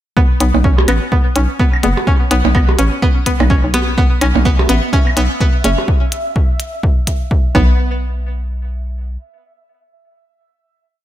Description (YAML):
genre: minimal techno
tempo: 126 BPM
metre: 4/4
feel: swing 59% on 16ths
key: unclear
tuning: A4 = 440 Hz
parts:
  - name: string-like resonator pluck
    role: riff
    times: 0.2-8.0 s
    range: B3 to C#4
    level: -18 LUFS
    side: equal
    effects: chorus, sidechain pumping, tape echo
  - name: electronic kick drum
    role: drums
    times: 0.2-7.7 s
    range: none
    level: -13 LUFS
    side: equal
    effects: none
  - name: hollow knocking FM bass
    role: bass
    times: 0.4-9.2 s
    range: F#1 to B1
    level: -16 LUFS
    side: equal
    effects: tube saturation, sidechain pumping
  - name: electronic hi-hat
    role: drums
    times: 0.4-7.2 s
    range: none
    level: -25 LUFS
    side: left 1 dB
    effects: none
  - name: percussion blips and claves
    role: percussion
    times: 0.5-5.9 s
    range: none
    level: -21 LUFS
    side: right 6 dB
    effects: diffuse ambient delay
  - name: bubbling stepped-filter texture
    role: texture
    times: 4.6-7.8 s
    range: E5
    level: -27 LUFS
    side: equal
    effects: chorus, built-in reverb, sidechain pumping
room: light reverb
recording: none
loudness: -12 LUFS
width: side -12 dB against mid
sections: 0.2-7.8 groove; 7.8-11.0 final hit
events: none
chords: 0.2 Bsus4; 7.8 N.C.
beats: | 0.17 0.64 1.12 1.59 | 2.07 2.55 3.02 3.50 | 3.98 4.45 4.93 5.41 | 5.88 6.36 6.83 7.31 | 7.79 8.26 8.74